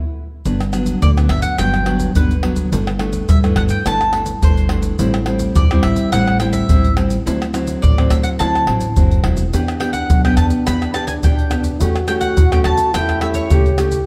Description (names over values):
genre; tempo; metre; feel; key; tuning
samba and choro; 106 BPM; 4/4; straight; G major; A4 = 440 Hz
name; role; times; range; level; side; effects
nylon-string guitar; accompaniment; 0.5-14.1 s; G2 to G4; -23 LUFS; equal; none
upright bass; bass; 0.5-14.0 s; E1 to G2; -22 LUFS; equal; none
tube shaker, surdo, pandeiro and tamborim; percussion; 0.5-14.1 s; none; -20 LUFS; equal; none
mandolin; melody; 1.0-13.8 s; B4 to B5; -24 LUFS; equal; none
breathy trombone; second line; 9.5-14.1 s; D4 to G4; -24 LUFS; equal; none
room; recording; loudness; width
wet large studio reverb, RT60 1.4 s; none; -16 LUFS; mono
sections
0.5-14.1 A section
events
drum fill 0.0-0.5; band accent 0.0-0.5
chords
0.5 Gmaj7; 2.7 C69/G (rootless); 5.0 Am7; 7.3 D9; 9.5 Em7; 11.8 A7/E